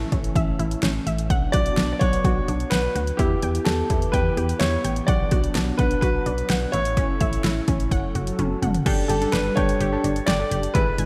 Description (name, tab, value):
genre	synth-pop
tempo	127 BPM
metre	4/4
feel	straight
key	unclear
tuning	A4 = 438 Hz
part	warm grand piano	melody	0.0-11.1 s	G4 to D5	-29 LUFS	equal	slapback echo, digital delay
part	phased analog pad	sustained chords	0.0-11.1 s	E3 to B4	-32 LUFS	equal	phaser, chorus
part	unison pluck	arpeggios	0.0-11.1 s	C#4 to G#5	-33 LUFS	equal	slapback echo, digital delay
part	solid FM bass	bass	0.0-11.1 s	F#1 to E2	-28 LUFS	equal	none
part	deep house drum kit	drums	0.1-11.1 s	crash cymbal, hi-hat, kick drum, snare drum, toms	-26 LUFS	equal	overdrive
part	warm analog keys	accompaniment	8.9-11.0 s	D4 to B4	-31 LUFS	equal	chorus, slapback echo
room	moderate lush hall reverb, RT60 2.4 s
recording	big arena sound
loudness	-22 LUFS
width	mono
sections	0.0-8.9 A section; 8.9-11.1 B section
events	drum fill 8.4-8.9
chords	0.0 A; 1.3 Bm; 3.2 Em; 5.1 Bm; 6.7 A; 7.9 F#m; 8.9 Gsus2